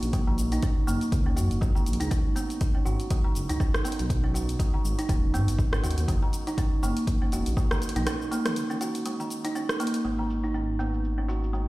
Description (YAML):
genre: afro house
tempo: 121 BPM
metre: 4/4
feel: swing 57% on 16ths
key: G# minor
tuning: A4 = 440 Hz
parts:
  - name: dark detuned saw bass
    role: bass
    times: 0.0-11.7 s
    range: D#1 to G#2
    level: -28 LUFS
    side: equal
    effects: tube saturation, sidechain pumping
  - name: deep house drum kit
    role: drums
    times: 0.0-11.7 s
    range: crash cymbal, hi-hat, rim click, shaker, toms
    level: -35 LUFS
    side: equal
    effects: low-pass filter on hats, low-pass filter on perc, low-pass filter on snare, low-pass filter on toms, low-pass filter on cymbals
  - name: kalimba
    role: arpeggios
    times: 0.1-11.7 s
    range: D#3 to F#4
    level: -30 LUFS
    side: right 1 dB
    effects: sidechain pumping, low-pass filter, dub echo
  - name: electronic kick drum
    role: drums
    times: 0.1-7.7 s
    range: none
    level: -26 LUFS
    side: equal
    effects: none
room: light reverb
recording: played on a big sound system in a bare room, stone room reverb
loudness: -24 LUFS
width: side -19 dB against mid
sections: 0.0-10.1 A section; 10.1-11.7 B section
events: break 8.1-10.1; filter sweep on kalimba 10.1-11.7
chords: 0.0 F#add9; 2.1 G#m7; 6.1 F#add9; 10.1 G#5